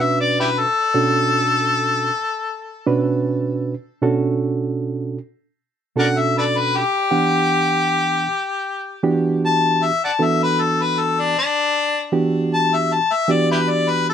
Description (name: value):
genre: blues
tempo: 78 BPM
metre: 4/4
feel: straight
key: B minor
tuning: A4 = 440 Hz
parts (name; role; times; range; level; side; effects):
- warm harmonica; melody; 0.0-14.1 s; D4 to A5; -18 LUFS; left 4 dB; overdrive
- reed electric piano; accompaniment; 0.0-14.1 s; B2 to F#5; -19 LUFS; right 3 dB; none
room: light reverb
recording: none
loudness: -17 LUFS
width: side -8 dB against mid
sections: 0.0-14.1 A section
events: harmonica solo 0.0-14.1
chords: 0.0 Bm7; 7.1 Em7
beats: 0.16 | 0.93 1.71 2.48 3.25 | 4.02 4.79 5.56 6.33 | 7.11 7.88 8.65 9.42 | 10.19 10.96 11.73 12.50 | 13.28 14.04